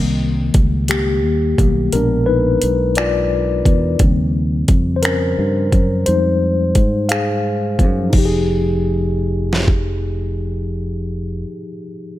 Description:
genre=slow six-eight R&B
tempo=58 BPM (dotted quarters)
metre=6/8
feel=straight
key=F minor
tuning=A4 = 440 Hz
part: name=mellow tine electric piano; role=accompaniment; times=0.0-12.2 s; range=Cb3 to F5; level=-19 LUFS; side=left 2 dB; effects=medium stereo tremolo, low-pass filter
part: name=fingered electric bass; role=bass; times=0.0-11.4 s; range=F1 to Ab2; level=-19 LUFS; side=equal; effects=none
part: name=smooth R&B drum kit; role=drums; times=0.5-9.8 s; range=crash cymbal, finger snaps, hi-hat, kick drum, snare drum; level=-17 LUFS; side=equal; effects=none
room=light reverb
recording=none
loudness=-14 LUFS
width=side -14 dB against mid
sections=0.0-8.1 A section; 8.1-12.2 B section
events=tine electric piano solo 0.0-8.1; filter sweep on tine electric piano 0.0-8.1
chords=0.0 Cm7; 1.9 Bb7b9; 4.0 Eb13; 6.1 Fm9

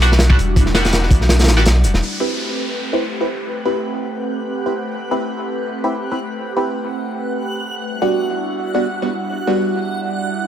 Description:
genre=drum and bass, jungle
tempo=165 BPM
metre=4/4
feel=straight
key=A dorian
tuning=A4 = 440 Hz
part: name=airy breathy pad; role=sustained chords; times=0.0-10.5 s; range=G3 to B4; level=-24 LUFS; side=right 1 dB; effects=chorus, phaser, vintage 12-bit sampler grit
part: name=band-passed chord stab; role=stabs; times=0.0-10.2 s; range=G3 to B4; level=-21 LUFS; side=equal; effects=phaser, wide subtle chorus, dub echo
part: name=soft dub sub bass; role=bass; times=0.0-2.0 s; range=E1 to B1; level=-15 LUFS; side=equal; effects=tube saturation
part: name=crunchy breakbeat drum kit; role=drums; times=0.0-2.0 s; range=hi-hat, kick drum, snare drum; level=-15 LUFS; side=equal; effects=none
part: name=downlifter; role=sound effects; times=2.0-4.9 s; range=none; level=-28 LUFS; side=equal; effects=none
part: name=backwards swelling texture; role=texture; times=2.8-10.5 s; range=F#5 to F#6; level=-29 LUFS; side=right 2 dB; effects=built-in reverb
room=moderate digital room reverb, RT60 1.0 s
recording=none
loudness=-16 LUFS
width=side -10 dB against mid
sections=0.0-2.0 A section; 2.0-10.5 B section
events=drop 0.0-2.0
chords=0.0 Em9; 2.0 Am9; 7.8 Em9

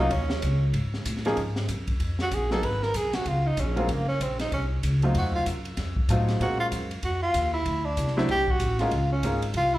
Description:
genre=jazz, small-group swing and bop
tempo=191 BPM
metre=4/4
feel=swing 61% on 8ths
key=unclear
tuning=A4 = 440 Hz
part: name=breathy tenor saxophone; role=second line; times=0.0-9.8 s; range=Bb3 to Cb5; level=-27 LUFS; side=right 1 dB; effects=slapback echo
part: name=clear baby grand piano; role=accompaniment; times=0.0-9.4 s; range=F3 to Ab4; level=-29 LUFS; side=equal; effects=none
part: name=upright bass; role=bass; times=0.0-9.8 s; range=Gb1 to Bb2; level=-27 LUFS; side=equal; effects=none
part: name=open jazz drum kit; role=drums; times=0.1-9.6 s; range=hi-hat, kick drum, ride cymbal, snare drum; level=-33 LUFS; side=equal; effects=none
room=light reverb, studio ambience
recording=live gig heard through the venue's PA, club reverb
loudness=-24 LUFS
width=side -16 dB against mid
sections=0.0-1.4 A section; 1.4-9.8 A section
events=tenor saxophone solo 0.0-9.8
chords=0.1 Dbsus2; 0.7 Ab5; 1.4 Ab7sus2; 2.6 Abm; 3.3 Db6; 3.9 Gb; 5.1 F7b9; 6.4 Bbm9; 7.7 D7; 8.9 Db6

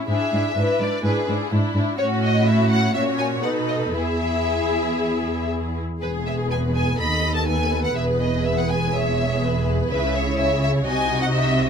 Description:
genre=quick classical-period movement for string orchestra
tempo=124 BPM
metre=4/4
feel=rubato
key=E major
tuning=A4 = 441 Hz
part: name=warm symphonic violin section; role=second line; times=0.0-11.7 s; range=E4 to E5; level=-27 LUFS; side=left 1 dB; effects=none
part: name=rich studio viola section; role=accompaniment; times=0.0-11.7 s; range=B3 to A4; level=-27 LUFS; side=left 1 dB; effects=none
part: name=rich symphonic violin section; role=melody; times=0.1-11.7 s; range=B4 to B5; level=-25 LUFS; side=left 2 dB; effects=none
part: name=rich symphonic cello section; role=bass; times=0.1-11.7 s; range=D#2 to C#3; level=-24 LUFS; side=right 1 dB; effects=none
part: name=warm symphonic double bass section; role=bass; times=6.0-11.7 s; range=E1 to D#2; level=-25 LUFS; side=right 2 dB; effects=none
room=light reverb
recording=close, detailed microphones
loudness=-19 LUFS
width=side -7 dB against mid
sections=0.0-6.0 A section; 6.0-11.7 B section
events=none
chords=0.1 E7/G#; 2.0 A6; 2.9 F#/A#; 3.4 B7; 4.0 E; 7.0 B7/D#; 8.0 E; 9.9 C#m; 10.9 G#7b13/B#

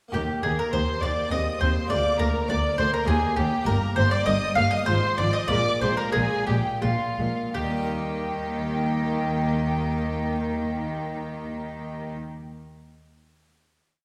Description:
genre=classical, baroque-style concerto movement with solo episodes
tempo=82-103 BPM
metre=3/4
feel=straight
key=Eb major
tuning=A4 = 440 Hz
part: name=clear symphonic violin section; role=melody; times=0.1-12.1 s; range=F5 to F6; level=-38 LUFS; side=equal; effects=none
part: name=mandolin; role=melody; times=0.1-12.1 s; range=F4 to F5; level=-29 LUFS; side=equal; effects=none
part: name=rich chamber violin section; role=second line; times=0.1-12.1 s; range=F4 to F5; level=-34 LUFS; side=equal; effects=none
part: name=harpsichord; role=accompaniment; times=0.1-12.4 s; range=D2 to Bb4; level=-36 LUFS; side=equal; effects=none
part: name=warm chamber viola section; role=accompaniment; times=0.1-12.1 s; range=F3 to C4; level=-34 LUFS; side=equal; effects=none
part: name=clear chamber double bass section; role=bass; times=0.1-12.1 s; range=G1 to Eb2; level=-33 LUFS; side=equal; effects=none
part: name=rich symphonic cello section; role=bass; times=0.1-12.1 s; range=D2 to Eb3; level=-32 LUFS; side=equal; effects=none
room=wet scoring stage reverb, RT60 1.7 s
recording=heard from further back in the room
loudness=-25 LUFS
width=mono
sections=0.1-7.6 ritornello; 7.6-12.0 final chord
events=slowing down 2.8-7.6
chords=0.1 Eb; 1.3 Ab/Eb; 1.9 Bb7/D; 3.1 Eb; 3.7 Eb/G; 4.9 Fm/Ab; 5.5 Bb5; 7.6 Eb

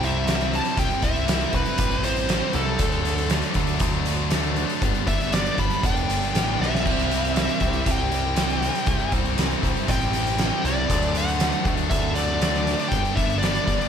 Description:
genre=quiet-loud alternative rock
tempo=119 BPM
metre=4/4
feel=straight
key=unclear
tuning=A4 = 440 Hz
part: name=high-gain lead guitar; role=melody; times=0.0-13.9 s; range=A4 to B5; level=-27 LUFS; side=equal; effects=distortion, digital delay
part: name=heavy high-gain guitar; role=riff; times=0.0-13.9 s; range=G2 to E4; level=-29 LUFS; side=left 15 dB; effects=distortion
part: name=thick fuzz guitar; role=riff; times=0.0-13.9 s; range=G2 to E4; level=-30 LUFS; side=right 14 dB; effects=distortion
part: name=growling picked electric bass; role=bass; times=0.0-13.8 s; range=E1 to D2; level=-27 LUFS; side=equal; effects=overdrive
part: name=oversized low-tuned drum kit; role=drums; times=0.0-13.9 s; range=crash cymbal, hi-hat, kick drum, snare drum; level=-25 LUFS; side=equal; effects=none
part: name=fuzz guitar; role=riff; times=6.8-13.9 s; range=G2 to E4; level=-32 LUFS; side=equal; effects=distortion
room=light reverb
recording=none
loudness=-20 LUFS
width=side -8 dB against mid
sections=0.0-13.9 A section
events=lead electric guitar solo 0.0-13.9; drum fill 6.6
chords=0.0 C; 2.8 D; 4.8 G; 6.9 C; 10.9 D; 12.9 G

